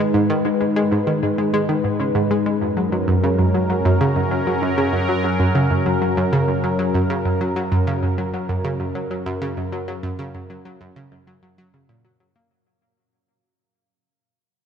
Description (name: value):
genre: ambient, sequencer-driven space music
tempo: 97 BPM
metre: 4/4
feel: straight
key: unclear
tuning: A4 = 439 Hz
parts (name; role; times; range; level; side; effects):
- sweeping resonant pad; sustained chords; 0.0-12.5 s; F#2 to B4; -22 LUFS; equal; chorus
- analog pluck; riff; 0.0-12.4 s; F#2 to A#3; -20 LUFS; right 1 dB; chorus, cassette tape, tape echo
room: wet cathedral reverb, RT60 5.4 s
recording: in a vast, echoing space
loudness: -18 LUFS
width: side -7 dB against mid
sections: 0.0-12.5 A section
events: fade-out 5.9-12.5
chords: 0.0 G#m; 2.6 F#